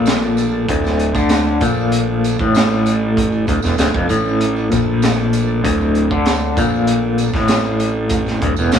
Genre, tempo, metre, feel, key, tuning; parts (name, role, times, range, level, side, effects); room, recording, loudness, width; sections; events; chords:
psychedelic rock; 97 BPM; 4/4; straight; D minor; A4 = 440 Hz
tonewheel organ; sustained chords; 0.0-8.8 s; F3 to A4; -26 LUFS; right 7 dB; chorus vibrato, slow rotary speaker
twangy electric guitar; riff; 0.0-8.8 s; D2 to D3; -17 LUFS; left 3 dB; tremolo
fuzz fingered electric bass; bass; 0.0-8.8 s; D1 to D2; -20 LUFS; right 2 dB; overdrive
raw garage drum kit; drums; 0.1-8.8 s; hi-hat, kick drum, snare drum; -20 LUFS; right 2 dB
tambourine; percussion; 0.1-8.8 s; -33 LUFS; right 8 dB
light reverb; band playing live in one room, small room ambience; -14 LUFS; side -8 dB against mid
0.0-8.8 A section
0.0 Dm